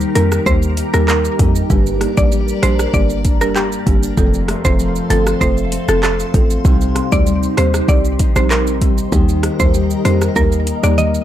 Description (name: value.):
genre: dancehall.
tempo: 97 BPM.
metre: 4/4.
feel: straight.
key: unclear.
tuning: A4 = 440 Hz.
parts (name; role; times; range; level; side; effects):
folk marimba with medium mallets; accompaniment; 0.0-11.0 s; G3 to A4; -21 LUFS; right 2 dB; none.
glassy FM pad; sustained chords; 0.0-11.2 s; Eb4 to C6; -24 LUFS; right 1 dB; ensemble chorus, built-in reverb, phaser, sidechain pumping.
nylon-string guitar; arpeggios; 0.0-11.2 s; F2 to Eb4; -23 LUFS; left 6 dB; tape echo.
short 808-style bass; bass; 0.0-11.2 s; F1 to F2; -18 LUFS; equal; none.
afro-pop drum kit; drums; 0.0-11.2 s; handclaps, hi-hat, kick drum, rim click, shaker, toms; -17 LUFS; equal; none.
maracas and timbales; percussion; 0.0-11.2 s; none; -33 LUFS; right 9 dB; none.
mallet-like synth pluck; melody; 0.2-11.2 s; G4 to Eb5; -20 LUFS; right 1 dB; chorus, tape echo.
room: little or no reverb.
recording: dark, warm production.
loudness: -12 LUFS.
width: side -12 dB against mid.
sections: 0.0-11.2 A section.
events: drum fill 11.0.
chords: 0.0 Eb; 1.7 Gm; 4.2 F; 6.7 Cm; 9.1 Eb.